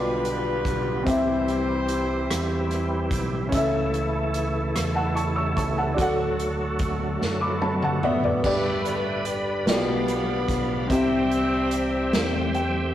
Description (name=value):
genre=slow gospel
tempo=49 BPM (dotted quarters)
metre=6/8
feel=straight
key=G major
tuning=A4 = 440 Hz
part: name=clear horn section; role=melody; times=0.0-3.1, 8.0-12.9 s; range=D3 to C5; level=-29 LUFS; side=left 2 dB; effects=none
part: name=warm upright piano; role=accompaniment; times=0.0-12.9 s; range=G2 to E6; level=-26 LUFS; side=left 1 dB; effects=none
part: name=bright tonewheel organ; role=sustained chords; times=0.0-12.9 s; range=C#3 to B5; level=-28 LUFS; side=right 1 dB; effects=chorus vibrato, slow rotary speaker
part: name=fingered electric bass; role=bass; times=0.0-12.9 s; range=F#1 to F#2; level=-31 LUFS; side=equal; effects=none
part: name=swinging big-band drum kit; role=drums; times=0.2-12.7 s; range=crash cymbal, hi-hat, kick drum, rim click, snare drum, toms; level=-30 LUFS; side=equal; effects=none
room=moderate studio reverb, RT60 0.5 s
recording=rough rehearsal-room recording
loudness=-22 LUFS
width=side -12 dB against mid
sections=0.0-8.4 A section; 8.4-12.9 A section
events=drum fill 7.2-8.4; upright piano fill 7.2-8.4, 12.1-12.9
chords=0.0 G7/B; 1.1 C; 3.5 A/C#; 6.0 D; 8.4 G; 9.7 G7/B; 10.9 C